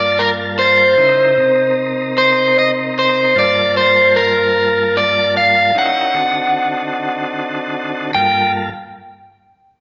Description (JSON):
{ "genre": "blues", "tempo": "50 BPM (dotted quarters)", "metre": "12/8", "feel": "straight", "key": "G minor", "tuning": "A4 = 440 Hz", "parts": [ { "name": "crunchy overdriven guitar", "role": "melody", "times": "0.0-8.5 s", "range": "Bb4 to G5", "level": "-15 LUFS", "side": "equal", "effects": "spring reverb" }, { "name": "tonewheel organ", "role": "sustained chords", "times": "0.0-8.7 s", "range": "G2 to A5", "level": "-22 LUFS", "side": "equal", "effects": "slow rotary speaker" } ], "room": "moderate large studio reverb, RT60 1.3 s", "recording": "band playing live in one room, nothing above 7.5 kHz", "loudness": "-14 LUFS", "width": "mono", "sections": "0.0-8.1 A section; 8.1-9.8 B section", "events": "none", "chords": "0.0 Gm7; 1.0 Cm7; 3.4 Gm7; 5.8 D7b9; 8.1 Gm7", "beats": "0.99 2.18 | 3.37 4.56 5.75 6.94 | 8.14" }